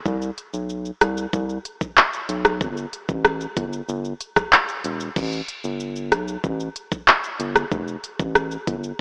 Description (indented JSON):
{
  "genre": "dancehall",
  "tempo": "94 BPM",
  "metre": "4/4",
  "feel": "straight",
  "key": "unclear",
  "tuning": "A4 = 438 Hz",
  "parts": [
    { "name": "round analog bass", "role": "bass", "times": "0.1-8.9 s", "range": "E1 to C2", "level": "-26 LUFS", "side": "equal", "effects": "none" },
    { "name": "island pop drum kit", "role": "drums", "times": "0.1-9.0 s", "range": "crash cymbal, handclaps, hi-hat, kick drum, rim click, shaker", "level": "-18 LUFS", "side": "equal", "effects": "none" }
  ],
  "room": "light reverb, digital ambience",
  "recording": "AM radio sound",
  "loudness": "-20 LUFS",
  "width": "side -35 dB against mid",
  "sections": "0.0-5.2 A section; 5.2-9.0 B section",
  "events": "none",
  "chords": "none"
}